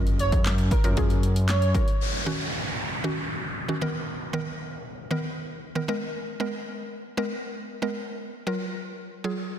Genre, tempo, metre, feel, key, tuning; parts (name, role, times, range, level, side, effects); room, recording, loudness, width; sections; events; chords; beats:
dance-pop; 116 BPM; 4/4; straight; Eb minor; A4 = 445 Hz
mallet-like synth pluck; accompaniment; 0.0-9.6 s; Eb3 to Bb4; -30 LUFS; right 1 dB; chorus, sidechain pumping
fat analog bass; bass; 0.0-1.8 s; Gb1 to Gb2; -24 LUFS; equal; sidechain pumping
house drum kit; drums; 0.1-2.0 s; handclaps, hi-hat, kick drum, snare drum; -24 LUFS; equal
airy dreamy lead; melody; 0.2-1.9 s; Bb4 to Db5; -31 LUFS; right 4 dB; chorus, sidechain pumping, ping-pong delay
downlifter; sound effects; 2.0-6.1 s; -32 LUFS; equal
light reverb; dense, heavily limited modern master; -25 LUFS; side -10 dB against mid
0.0-2.0 A section; 2.0-9.6 B section
drop 0.0-2.0
0.0 Gbmaj7; 2.0 Ebm7; 3.8 Bmaj7; 5.9 Abmadd9; 8.2 Gbmaj7
0.45 0.97 1.49 | 2.01 2.52 3.04 3.56 | 4.08 4.59 5.11 5.63 | 6.14 6.66 7.18 7.70 | 8.21 8.73 9.25